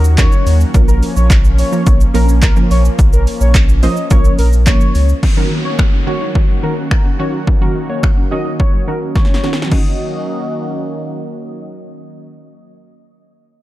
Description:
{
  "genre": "dance-pop",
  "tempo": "107 BPM",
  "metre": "4/4",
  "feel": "straight",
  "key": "Eb minor",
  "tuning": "A4 = 441 Hz",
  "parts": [
    { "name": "lush unison pad", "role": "sustained chords", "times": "0.0-12.7 s", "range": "Eb3 to Gb4", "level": "-24 LUFS", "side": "equal", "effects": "chorus, sidechain pumping, low-pass filter" },
    { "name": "saturated sub bass", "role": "bass", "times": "0.0-5.1 s", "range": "Bb1 to Eb2", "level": "-12 LUFS", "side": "equal", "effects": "sidechain pumping" },
    { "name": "punchy analog drum machine", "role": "drums", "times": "0.0-9.8 s", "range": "crash cymbal, finger snaps, handclaps, hi-hat, kick drum, shaker, snare drum", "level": "-12 LUFS", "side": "equal", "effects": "overdrive" },
    { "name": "octave-doubled lead", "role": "melody", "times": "0.2-11.4 s", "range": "Bb4 to Eb5", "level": "-24 LUFS", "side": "left 2 dB", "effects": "chorus, sidechain pumping, low-pass filter, ping-pong delay" },
    { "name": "wide unison pluck", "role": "accompaniment", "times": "0.2-13.0 s", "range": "Eb3 to C5", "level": "-21 LUFS", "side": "right 2 dB", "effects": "sidechain pumping, low-pass filter" },
    { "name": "mallet-like synth pluck", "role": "arpeggios", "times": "5.2-13.1 s", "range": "Eb3 to Eb4", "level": "-27 LUFS", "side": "left 6 dB", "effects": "chorus, sidechain pumping, low-pass filter, ping-pong delay" },
    { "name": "downlifter", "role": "sound effects", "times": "5.2-9.7 s", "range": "none", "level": "-28 LUFS", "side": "equal", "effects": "none" }
  ],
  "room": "little or no reverb",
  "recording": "dark, warm production",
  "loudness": "-11 LUFS",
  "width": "side -16 dB against mid",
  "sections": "0.0-5.2 A section; 5.2-9.7 B section; 9.7-12.0 C section",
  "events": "drop 0.0-5.2; filter sweep 5.2-9.7; drum fill 9.2-9.7",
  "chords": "0.0 Ebm7; 0.7 Bbm; 5.2 Ebm7",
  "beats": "0.18 | 0.74 1.30 1.86 2.42 | 2.99 3.55 4.11 4.67 | 5.23 5.79 6.35 6.91 | 7.47 8.03 8.59 9.15 | 9.71 10.28 10.84 11.40"
}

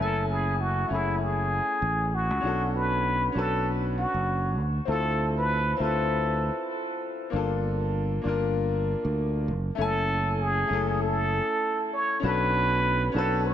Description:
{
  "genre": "sunset chillout",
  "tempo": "98 BPM",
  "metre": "4/4",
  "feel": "swing 58% on 16ths",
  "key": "B minor",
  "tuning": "A4 = 441 Hz",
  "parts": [
    { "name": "trumpet with plunger mute", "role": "melody", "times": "0.0-13.5 s", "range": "E4 to C#5", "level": "-27 LUFS", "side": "equal", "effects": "digital delay" },
    { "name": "bright concert grand piano", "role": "accompaniment", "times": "0.0-13.5 s", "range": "A3 to G#5", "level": "-30 LUFS", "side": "moving between left 7 dB and right 2 dB", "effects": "auto-pan, ping-pong delay" },
    { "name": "overdriven fingered electric bass", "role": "bass", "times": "0.0-13.5 s", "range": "F#1 to D2", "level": "-28 LUFS", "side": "right 1 dB", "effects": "none" }
  ],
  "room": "moderate lush hall reverb, RT60 2.6 s",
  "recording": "none",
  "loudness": "-24 LUFS",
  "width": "side -10 dB against mid",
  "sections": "0.0-12.2 A section; 12.2-13.5 B section",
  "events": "none",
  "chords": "0.0 F#m9; 2.4 Bm9; 4.6 Dm9; 7.3 Gm9; 9.5 F#m9; 12.2 Bm9",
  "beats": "0.60 1.21 1.82 | 2.44 3.05 3.66 4.27 | 4.89 5.50 6.11 6.72 | 7.33 7.95 8.56 9.17 | 9.78 10.40 11.01 11.62 | 12.23 12.85 13.46"
}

